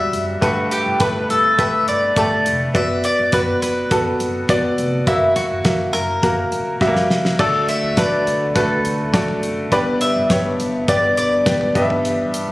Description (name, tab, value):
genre	piano-driven pop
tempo	103 BPM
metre	4/4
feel	straight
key	unclear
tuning	A4 = 439 Hz
part	mandolin	melody	0.0-11.7 s	E4 to E5	-19 LUFS	left 1 dB	none
part	bright grand piano	accompaniment	0.0-12.5 s	G2 to E5	-19 LUFS	equal	none
part	upright bass	bass	0.0-12.5 s	E#1 to D2	-28 LUFS	equal	none
part	damped 70s drum kit	drums	0.1-12.5 s	crash cymbal, hi-hat, kick drum, snare drum, toms	-21 LUFS	equal	none
part	tonewheel organ	sustained chords	7.4-12.5 s	D3 to A4	-28 LUFS	equal	slow rotary speaker
room	light reverb, studio ambience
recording	recorded on a phone in the room, studio reverb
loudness	-15 LUFS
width	side -18 dB against mid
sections	0.0-7.4 A section; 7.4-12.5 B section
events	drum fill 6.8-7.4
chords	0.4 Gadd9; 2.7 D6/F#; 5.1 F#7; 7.4 D; 9.7 G; 11.8 Em/G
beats	| 0.42 1.00 1.58 2.17 | 2.75 3.33 3.91 4.49 | 5.07 5.65 6.23 6.81 | 7.39 7.98 8.56 9.14 | 9.72 10.30 10.88 11.46 | 12.04